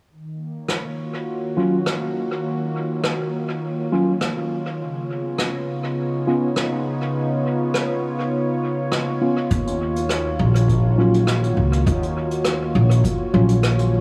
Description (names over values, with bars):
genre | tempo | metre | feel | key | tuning
ambient dub | 102 BPM | 4/4 | swing 54% on 16ths | Eb minor | A4 = 440 Hz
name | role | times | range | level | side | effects
warm analog pad | sustained chords | 0.1-14.0 s | Db3 to Db5 | -26 LUFS | equal | chorus
jazz brush drum kit | drums | 0.7-13.9 s | hi-hat, rim click | -30 LUFS | equal | dub echo
mellow tine electric piano | stabs | 1.6-13.5 s | Gb3 to F4 | -27 LUFS | equal | low-pass filter, dub echo
upright bass | bass | 9.5-14.0 s | Bb1 to Eb2 | -21 LUFS | equal | none
electronic kick drum | drums | 9.5-13.2 s | none | -28 LUFS | equal | none
room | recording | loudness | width
light reverb | small room ambience | -21 LUFS | mono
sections
0.1-9.5 A section; 9.5-14.0 B section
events
filter sweep on tine electric piano 0.1-9.5, 9.5-14.0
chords
0.1 Ebm9; 4.8 Db7; 9.5 Ebm9